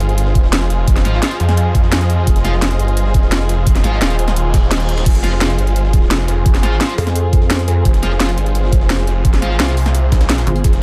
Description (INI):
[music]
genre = dark technical drum and bass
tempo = 172 BPM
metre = 4/4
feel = straight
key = F minor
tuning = A4 = 440 Hz
[part]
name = deep dark ambient pad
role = sustained chords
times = 0.0-10.8 s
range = F4 to Eb5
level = -28 LUFS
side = equal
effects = chorus, built-in reverb, sidechain pumping
[part]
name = snarling distorted saw bass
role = bass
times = 0.0-10.8 s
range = Eb1 to F2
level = -18 LUFS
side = equal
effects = distortion, overdrive, sidechain pumping
[part]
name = breakbeat sampler-style drum kit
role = drums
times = 0.0-10.8 s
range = hi-hat, snare drum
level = -35 LUFS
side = equal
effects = none
[part]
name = drum and bass drum kit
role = drums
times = 0.0-10.8 s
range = crash cymbal, hi-hat, snare drum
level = -22 LUFS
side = equal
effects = overdrive
[part]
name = dark studio string section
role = texture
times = 0.0-10.8 s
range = F4 to C5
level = -28 LUFS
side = equal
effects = sidechain pumping
[part]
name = electronic kick drum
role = drums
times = 0.4-10.7 s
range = none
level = -15 LUFS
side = equal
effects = overdrive
[part]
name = distorted electric guitar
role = stabs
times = 1.0-9.7 s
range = F4 to F5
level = -30 LUFS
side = equal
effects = distortion, tape echo
[part]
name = reverse cymbal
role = sound effects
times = 4.5-5.1 s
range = none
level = -33 LUFS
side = equal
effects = none
[part]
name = pulsing pluck wobble bass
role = bass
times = 7.0-7.8, 10.5-10.6 s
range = G1 to F2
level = -18 LUFS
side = equal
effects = chorus
[sound]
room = digital ambience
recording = none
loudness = -15 LUFS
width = mono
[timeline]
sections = 0.0-10.8 A section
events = reverse cymbal 4.5-5.1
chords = 0.0 Fm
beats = 0.18 0.53 | 0.88 1.23 1.57 1.92 | 2.27 2.62 2.97 3.32 | 3.67 4.02 4.36 4.71 | 5.06 5.41 5.76 6.11 | 6.46 6.81 7.16 7.50 | 7.85 8.20 8.55 8.90 | 9.25 9.60 9.95 10.29 | 10.64